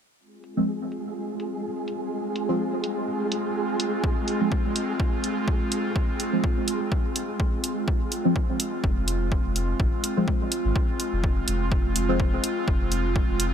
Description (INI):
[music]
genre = dub techno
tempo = 125 BPM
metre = 4/4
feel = swing 55% on 16ths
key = F minor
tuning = A4 = 441 Hz
[part]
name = airy breathy pad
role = sustained chords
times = 0.5-13.5 s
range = Ab3 to F4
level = -28 LUFS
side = right 1 dB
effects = chorus, sidechain pumping
[part]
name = flickering grainy texture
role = texture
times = 0.7-7.9 s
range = Ab3 to Ab4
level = -33 LUFS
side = right 2 dB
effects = built-in reverb, sidechain pumping
[part]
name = electronic hi-hat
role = drums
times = 0.4-13.5 s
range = none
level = -28 LUFS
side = right 1 dB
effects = low-pass filter on hats
[part]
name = deep mellow chord stab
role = stabs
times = 0.6-12.2 s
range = F3 to C4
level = -28 LUFS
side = equal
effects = chorus, phaser, sidechain pumping, dub echo
[part]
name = electronic kick drum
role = drums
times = 4.0-13.3 s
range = none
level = -25 LUFS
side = equal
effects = none
[part]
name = soft dub sub bass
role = bass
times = 8.8-13.5 s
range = F1 to Ab1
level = -27 LUFS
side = equal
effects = sidechain pumping
[sound]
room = digital ambience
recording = none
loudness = -23 LUFS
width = side -8 dB against mid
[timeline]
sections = 0.2-7.9 A section; 7.9-13.5 B section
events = filter sweep on synth stab 0.2-7.9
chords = 0.2 Fm